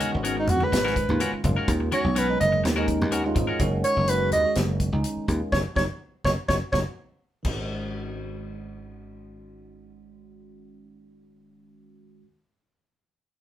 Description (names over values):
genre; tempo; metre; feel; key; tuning
electric jazz fusion; 125 BPM; 4/4; swing 54% on 16ths; G# dorian; A4 = 441 Hz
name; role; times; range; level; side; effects
bell-like tine electric piano; accompaniment; 0.0-12.3 s; D#3 to F#5; -31 LUFS; right 2 dB; phaser
clean electric guitar; stabs; 0.0-3.6 s; B3 to A#4; -30 LUFS; left 3 dB; none
tight funk drum kit; drums; 0.0-7.6 s; crash cymbal, hi-hat, kick drum, snare drum; -30 LUFS; equal; none
dry thumbed slap bass; bass; 0.1-12.2 s; F#1 to E#2; -27 LUFS; equal; none
warm soprano saxophone; melody; 0.4-6.8 s; D#4 to D#5; -24 LUFS; right 1 dB; none
congas; percussion; 0.5-3.5 s; none; -31 LUFS; left 1 dB; none
room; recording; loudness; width
moderate studio reverb, RT60 0.5 s; band playing live in one room; -22 LUFS; side -12 dB against mid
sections
0.0-7.5 A section; 7.5-11.3 B section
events
soprano saxophone solo 0.0-7.5; tine electric piano fill 2.9-3.6; band accent 5.5-7.5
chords
0.0 G#m11; 3.6 F#sus2; 7.5 G#7sus4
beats
0.24 0.72 1.20 | 1.68 2.16 2.64 3.12 | 3.60 4.08 4.57 5.05 | 5.53 6.01 6.49 6.97 | 7.46 7.94 8.42 8.90 | 9.39 9.87 10.35 10.84